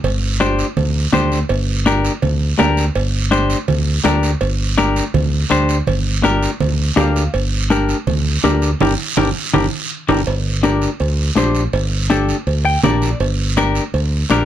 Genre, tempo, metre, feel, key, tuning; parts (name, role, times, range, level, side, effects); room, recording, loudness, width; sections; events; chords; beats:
latin, cumbia; 164 BPM; 4/4; straight; G minor; A4 = 440 Hz
fingered electric bass; bass; 0.0-14.4 s; G1 to D2; -18 LUFS; equal
congas; percussion; 0.0-14.4 s; -23 LUFS; right 2 dB
cowbell and timbales; percussion; 0.0-14.4 s; -24 LUFS; right 6 dB
guiro; percussion; 0.0-14.4 s; -27 LUFS; right 6 dB
semi-hollow electric guitar; accompaniment; 0.4-14.4 s; D4 to G5; -16 LUFS; left 3 dB
light reverb; -14 LUFS; side -11 dB against mid
0.0-10.3 A section; 10.3-14.4 B section
clean electric guitar fill 6.8-7.3, 12.5-13.2; band accent 8.8-10.3; drum fill 9.7-10.3
0.0 Gm
| 0.04 0.41 0.77 1.13 | 1.50 1.86 2.23 2.59 | 2.96 3.32 3.69 4.05 | 4.42 4.78 5.15 5.51 | 5.88 6.24 6.61 6.98 | 7.34 7.71 8.07 8.44 | 8.81 9.17 9.54 9.90 | 10.27 10.64 11.00 11.37 | 11.74 12.10 12.47 12.84 | 13.20 13.57 13.93 14.30